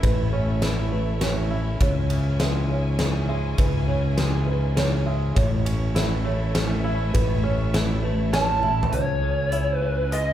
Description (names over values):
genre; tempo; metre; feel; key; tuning
post-rock; 101 BPM; 3/4; straight; C# minor; A4 = 440 Hz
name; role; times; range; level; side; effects
clear studio string section; sustained chords; 0.0-10.3 s; C#3 to G#5; -34 LUFS; left 1 dB; none
felt-muted upright piano; arpeggios; 0.0-10.3 s; B4 to E5; -31 LUFS; right 4 dB; none
twangy electric guitar; arpeggios; 0.0-10.3 s; C#2 to E4; -30 LUFS; left 3 dB; none
growling fingered electric bass; bass; 0.0-10.3 s; A1 to C#2; -24 LUFS; equal; overdrive
huge arena drum kit; drums; 0.0-10.3 s; hi-hat, kick drum, ride cymbal, snare drum, toms; -26 LUFS; equal; none
lead guitar through a small cranked amp; melody; 8.3-10.3 s; C#5 to A5; -24 LUFS; right 1 dB; overdrive
room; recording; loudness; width
moderate large studio reverb, RT60 1.3 s; band playing live in one room; -20 LUFS; side -11 dB against mid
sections
0.0-8.9 A section; 8.9-10.3 B section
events
drum fill 8.6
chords
0.0 Aadd9; 1.8 C#m; 5.4 Aadd9; 8.9 C#m